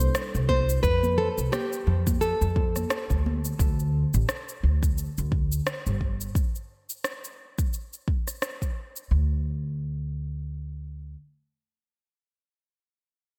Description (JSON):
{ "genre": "sunset chillout", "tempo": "87 BPM", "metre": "4/4", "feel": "swing 57% on 16ths", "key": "D dorian", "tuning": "A4 = 440 Hz", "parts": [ { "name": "nylon-string guitar", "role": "melody", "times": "0.0-3.2 s", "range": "G4 to C5", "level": "-31 LUFS", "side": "equal", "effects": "diffuse ambient delay" }, { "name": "mellow FM electric piano", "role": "accompaniment", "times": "0.0-0.9 s", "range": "G3 to A4", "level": "-42 LUFS", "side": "equal", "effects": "chorus, low-pass filter, analog delay" }, { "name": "upright bass", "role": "bass", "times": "0.0-11.1 s", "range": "G1 to F2", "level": "-28 LUFS", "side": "equal", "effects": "none" }, { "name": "electronic shaker and rim click", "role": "drums", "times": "0.0-9.1 s", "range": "none", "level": "-35 LUFS", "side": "equal", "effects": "small room ambience" }, { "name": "congas and bongos", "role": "percussion", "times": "0.0-3.4 s", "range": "none", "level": "-37 LUFS", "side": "equal", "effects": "none" }, { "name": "electronic kick drum", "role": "drums", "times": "0.5-8.7 s", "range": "none", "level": "-29 LUFS", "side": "equal", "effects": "small room ambience" } ], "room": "light reverb", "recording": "none", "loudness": "-27 LUFS", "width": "mono", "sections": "0.0-9.1 A section; 9.1-11.9 B section", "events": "none", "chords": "0.0 C6; 0.8 Fadd9; 3.2 D5; 6.0 N.C." }